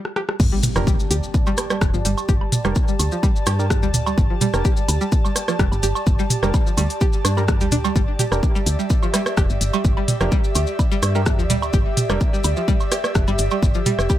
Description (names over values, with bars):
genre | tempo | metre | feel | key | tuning
minimal techno | 127 BPM | 4/4 | straight | unclear | A4 = 440 Hz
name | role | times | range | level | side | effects
minimal click drum kit | drums | 0.1-14.0 s | crash cymbal, hi-hat, rim click | -26 LUFS | left 1 dB | none
string-like resonator pluck | riff | 0.2-14.1 s | F3 to G4 | -26 LUFS | right 1 dB | chorus, sidechain pumping, ping-pong delay
woody FM bass | bass | 0.4-14.1 s | F1 to G2 | -22 LUFS | equal | sidechain pumping
electronic kick drum | drums | 0.4-14.2 s | none | -19 LUFS | equal | none
maracas | percussion | 0.4-14.2 s | none | -31 LUFS | left 4 dB | none
impact | sound effects | 0.4-2.3 s | none | -29 LUFS | equal | none
airy breathy pad | texture | 0.4-14.2 s | G4 to A5 | -27 LUFS | right 1 dB | chorus, sidechain pumping
booming analog drum machine | percussion | 0.6-14.2 s | rim click, toms, woodblock | -24 LUFS | right 2 dB | none
percussive organ stab | stabs | 0.8-12.2 s | D4 to Bb4 | -30 LUFS | right 2 dB | chorus, dub echo
room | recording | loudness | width
little or no reverb | none | -17 LUFS | side -13 dB against mid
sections
0.4-14.2 A section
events
break 0.0-0.4; drum fill 0.0-0.4; drop 0.4-14.2; impact 0.4-2.3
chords
0.4 Gm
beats
| 0.40 0.87 1.34 1.81 | 2.29 2.76 3.23 3.70 | 4.18 4.65 5.12 5.59 | 6.07 6.54 7.01 7.48 | 7.96 8.43 8.90 9.37 | 9.85 10.32 10.79 11.26 | 11.74 12.21 12.68 13.15 | 13.62 14.10